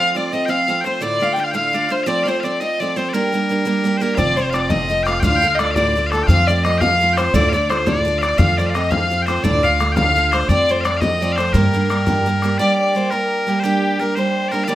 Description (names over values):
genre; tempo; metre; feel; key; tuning
celtic folk, Celtic jig; 114 BPM (dotted quarters); 6/8; straight; G minor; A4 = 441 Hz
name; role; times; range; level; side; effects
dark fiddle; melody; 0.0-14.8 s; G4 to G5; -20 LUFS; left 1 dB; slapback echo
loud bright bagpipes; second line; 0.0-14.8 s; G4 to G5; -23 LUFS; left 2 dB; none
picked steel-string acoustic guitar; accompaniment; 0.0-14.8 s; D2 to G4; -21 LUFS; right 3 dB; none
upright bass; bass; 4.2-12.6 s; F1 to G2; -21 LUFS; equal; none
bodhran; percussion; 4.2-12.5 s; none; -22 LUFS; left 2 dB; none
room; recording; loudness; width
moderate studio reverb, RT60 0.6 s; rough home demo mix; -15 LUFS; side -14 dB against mid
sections
0.0-4.2 A section; 4.2-12.6 A section; 12.6-14.8 B section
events
none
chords
0.0 F; 1.0 Dm; 2.1 F; 3.1 Gm; 4.2 F; 5.2 Dm; 6.3 F; 7.3 Dm; 8.4 F; 9.4 Dm; 10.5 F; 11.5 Gm